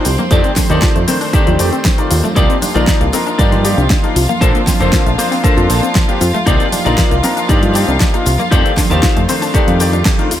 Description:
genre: nu-disco, nu disco.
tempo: 117 BPM.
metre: 4/4.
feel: straight.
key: C dorian.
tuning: A4 = 443 Hz.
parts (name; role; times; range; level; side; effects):
bright grand piano; accompaniment; 0.0-10.3 s; Eb3 to A5; -20 LUFS; left 1 dB; digital delay.
clear studio string section; sustained chords; 0.0-10.4 s; C4 to F5; -22 LUFS; equal; sidechain pumping.
tambourine, congas and bongos; percussion; 0.0-10.4 s; none; -24 LUFS; right 4 dB; none.
analog pluck; arpeggios; 0.1-10.4 s; A3 to A4; -21 LUFS; left 3 dB; chorus, sidechain pumping, ping-pong delay.
clean electric guitar; riff; 0.1-10.3 s; D4 to F5; -20 LUFS; left 3 dB; lush chorus, digital delay.
fat analog bass; bass; 0.1-10.4 s; F1 to G2; -15 LUFS; equal; none.
pop drum kit; drums; 0.1-10.4 s; hi-hat, shaker, snare drum; -19 LUFS; left 1 dB; none.
electronic kick drum; drums; 0.3-10.2 s; none; -14 LUFS; equal; none.
room: digital ambience.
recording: none.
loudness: -10 LUFS.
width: side -11 dB against mid.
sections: 0.0-10.4 A section.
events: band accent 10.1.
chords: 0.3 F13; 2.4 Cm11; 4.4 Bbmaj9; 6.5 Cm11; 8.5 F13.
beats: | 0.31 0.82 1.34 1.85 | 2.36 2.88 3.39 3.90 | 4.41 4.93 5.44 5.95 | 6.46 6.98 7.49 8.00 | 8.52 9.03 9.54 10.05.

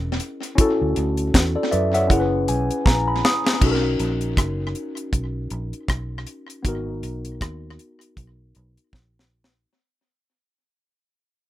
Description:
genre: lovers rock reggae.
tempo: 79 BPM.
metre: 4/4.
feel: swing 57% on 16ths.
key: B major.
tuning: A4 = 440 Hz.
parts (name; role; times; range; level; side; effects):
mellow tine electric piano; accompaniment; 0.0-9.7 s; B3 to D#6; -23 LUFS; left 1 dB; wide subtle chorus.
vintage muted fingered electric bass; bass; 0.0-9.6 s; E1 to F#2; -26 LUFS; equal; none.
deep reggae drum kit; drums; 0.2-9.6 s; crash cymbal, hi-hat, kick drum, rim click, snare drum; -20 LUFS; equal; tape echo.
room: light reverb.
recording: rough home demo mix.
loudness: -19 LUFS.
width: side -14 dB against mid.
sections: 0.0-3.6 A section; 3.6-9.7 B section.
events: tine electric piano fill 1.3-3.6; drum fill 2.9-3.6, 8.9-9.7; fade-out 3.6-9.7.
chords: 0.0 F#7 (rootless); 0.6 Dmaj9; 2.1 F#7sus4; 3.6 Bmaj7; 6.6 G#m7 (rootless).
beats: | 0.58 1.34 2.10 2.85 | 3.61 4.37 5.13 5.89 | 6.65 7.41 8.16 8.92.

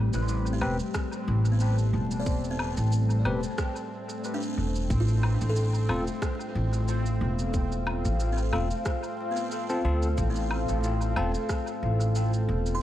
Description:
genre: ambient dub.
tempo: 91 BPM.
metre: 4/4.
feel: swing 55% on 16ths.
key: unclear.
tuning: A4 = 436 Hz.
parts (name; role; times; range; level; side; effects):
deep dark ambient pad; sustained chords; 0.0-12.8 s; G3 to A5; -33 LUFS; left 1 dB; chorus, built-in reverb.
buzzing kalimba; arpeggios; 0.0-12.8 s; B3 to C6; -39 LUFS; right 1 dB; dub echo.
upright bass; bass; 0.0-12.8 s; E1 to D2; -26 LUFS; equal; none.
bubbling stepped-filter texture; texture; 0.0-12.8 s; C4; -39 LUFS; right 2 dB; chorus, built-in reverb.
electronic shaker, woodblock and rim click; drums; 0.1-12.8 s; none; -38 LUFS; equal; dub echo.
bell-like tine electric piano; stabs; 0.6-11.3 s; C4 to B4; -36 LUFS; left 2 dB; phaser, dub echo.
electronic kick drum; drums; 0.9-11.6 s; none; -30 LUFS; equal; none.
room: light reverb.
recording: vinyl crackle.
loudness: -25 LUFS.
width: side -13 dB against mid.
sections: 0.0-12.8 A section.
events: none.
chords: 0.0 Am9; 4.9 F.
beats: 0.29 0.95 1.61 | 2.27 2.92 3.58 4.24 | 4.90 5.56 6.22 6.88 | 7.54 8.20 8.86 9.52 | 10.18 10.84 11.50 12.15 | 12.81.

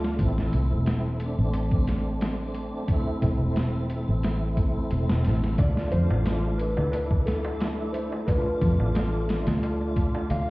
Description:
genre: trip hop.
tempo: 89 BPM.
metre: 4/4.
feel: straight.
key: D dorian.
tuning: A4 = 436 Hz.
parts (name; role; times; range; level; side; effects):
tonewheel organ; accompaniment; 0.0-10.5 s; A3 to F4; -30 LUFS; equal; overdrive, chorus vibrato, slow rotary speaker, tremolo, tape echo.
fingered electric bass; bass; 0.0-10.5 s; E1 to F2; -25 LUFS; equal; none.
boom bap sampler-style drum kit; drums; 0.0-10.5 s; hi-hat, kick drum, snare drum; -27 LUFS; equal; none.
felt-muted upright piano; melody; 5.6-10.5 s; A4 to F5; -32 LUFS; left 1 dB; tape echo.
darbuka; percussion; 5.6-10.4 s; none; -39 LUFS; right 1 dB; none.
room: little or no reverb.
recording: heard muffled through a wall, stone room reverb, vinyl crackle, EQ.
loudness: -23 LUFS.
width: side -21 dB against mid.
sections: 0.0-10.5 A section.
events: none.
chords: 0.2 Am; 5.6 Dm.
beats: | 0.19 0.86 1.54 2.21 | 2.89 3.56 4.24 4.91 | 5.58 6.26 6.93 7.61 | 8.28 8.96 9.63 10.30.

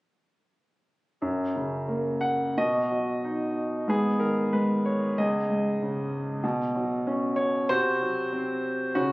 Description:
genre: classical, lyrical solo piano.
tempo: 88-97 BPM.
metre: 4/4.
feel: rubato.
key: F# major.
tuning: A4 = 438 Hz.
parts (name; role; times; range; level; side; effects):
clear concert grand piano; solo; 1.2-9.1 s; C#2 to F#5; -24 LUFS; equal; none.
room: moderate recital hall reverb, RT60 1.7 s.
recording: recorded on a phone in the room, club reverb.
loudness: -24 LUFS.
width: side -21 dB against mid.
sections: 1.2-9.1 A section.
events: none.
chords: 1.2 F#; 2.6 B; 3.9 G#m; 5.2 C#sus2; 6.4 Bsus2; 7.7 N.C..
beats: | 1.22 1.88 2.57 3.24 | 3.88 4.53 5.17 5.81 | 6.43 7.06 7.69 8.32 | 8.95.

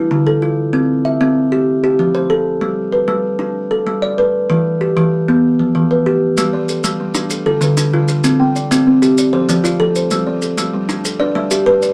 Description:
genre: southern african traditional, mbira-style interlocking cycle.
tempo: 128 BPM (dotted quarters).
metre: 12/8.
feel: straight.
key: G mixolydian.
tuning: A4 = 438 Hz.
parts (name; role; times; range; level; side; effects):
kalimba; arpeggios; 0.0-11.9 s; D3 to E5; -16 LUFS; equal; none.
maracas; percussion; 6.4-11.9 s; none; -26 LUFS; equal; none.
buzzing kalimba; arpeggios; 6.5-11.9 s; D3 to G5; -22 LUFS; equal; none.
room: moderate club reverb, RT60 0.5 s.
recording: none.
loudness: -15 LUFS.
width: mono.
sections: 0.0-6.4 A section; 6.4-11.9 A section.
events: none.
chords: 0.0 Dm; 0.7 C; 1.7 F; 2.6 G; 4.5 Em; 6.4 G5; 7.3 Dm; 8.2 C5; 9.2 F; 10.1 G.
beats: 0.27 | 0.74 1.21 1.68 2.15 | 2.62 3.09 3.56 4.03 | 4.50 4.97 5.43 5.90 | 6.37 6.84 7.31 7.78 | 8.24 8.71 9.18 9.64 | 10.11 10.57 11.04 11.51.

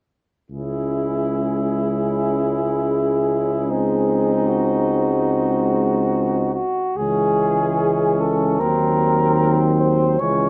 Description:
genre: classical, hymn-like piece for brass band.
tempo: 74 BPM.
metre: 4/4.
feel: uneven beats, rubato.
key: C# minor.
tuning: A4 = 440 Hz.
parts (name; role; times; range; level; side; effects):
mellow flugelhorn; melody; 0.5-10.5 s; F#4 to C#5; -25 LUFS; equal; none.
warm flugelhorn; second line; 0.5-10.5 s; C4 to E4; -27 LUFS; equal; none.
clear trombone; accompaniment; 0.5-10.5 s; Eb3 to G#3; -27 LUFS; equal; none.
warm euphonium; accompaniment; 0.5-10.5 s; Gb3 to C#4; -27 LUFS; equal; none.
warm tuba; bass; 0.5-10.5 s; C#2 to Eb2; -26 LUFS; equal; none.
room: light reverb.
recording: close, detailed microphones.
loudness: -19 LUFS.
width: mono.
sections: 0.5-7.0 A section; 7.0-10.5 B section.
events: none.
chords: 0.5 C#m; 3.7 G#7/C#; 7.0 C#m; 8.6 Cdim/Eb.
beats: | 0.52 1.34 2.15 2.93 | 3.71 4.49 5.27 6.10 | 6.99 7.80 8.61 9.41 | 10.21.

